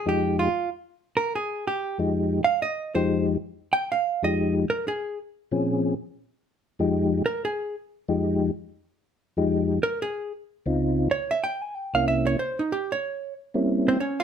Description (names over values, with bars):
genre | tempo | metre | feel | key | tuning
jazz | 187 BPM | 4/4 | swing 61% on 8ths | F minor | A4 = 440 Hz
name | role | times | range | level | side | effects
hollow-body jazz guitar | accompaniment | 0.0-5.2, 7.3-7.7, 9.8-14.2 s | C4 to Ab5 | -25 LUFS | right 4 dB | none
percussive tonewheel organ | melody | 0.1-14.0 s | C2 to Ab4 | -23 LUFS | left 2 dB | slow rotary speaker, chorus vibrato
room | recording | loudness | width
moderate studio reverb, RT60 0.7 s | none | -23 LUFS | side -8 dB against mid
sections
0.0-14.2 A section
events
hollow-body jazz guitar solo 0.0-14.2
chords
0.0 Fm9; 4.7 Bbm7; 11.1 C7b9; 12.4 N.C.; 13.7 C7b9